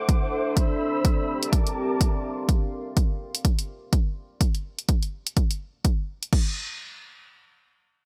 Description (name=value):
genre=piano house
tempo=125 BPM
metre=4/4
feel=swing 58% on 16ths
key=unclear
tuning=A4 = 440 Hz
part: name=warm studio violin section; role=sustained chords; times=0.0-2.5 s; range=Bb4 to E6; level=-33 LUFS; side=equal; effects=sidechain pumping, low-pass filter
part: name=deep dark ambient pad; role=texture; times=0.0-2.5 s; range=C4 to E5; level=-32 LUFS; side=equal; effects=chorus, built-in reverb, sidechain pumping
part: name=electronic kick drum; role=drums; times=0.1-6.4 s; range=none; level=-24 LUFS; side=equal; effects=overdrive
part: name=house drum kit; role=drums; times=0.1-6.4 s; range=crash cymbal, hi-hat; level=-32 LUFS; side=equal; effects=none
room=little or no reverb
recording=none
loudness=-26 LUFS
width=mono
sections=0.0-6.3 A section; 6.3-8.1 B section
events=filter sweep on violin section 0.0-2.5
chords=0.0 D7; 0.6 Cmaj7; 1.5 Bbmaj7; 2.5 N.C.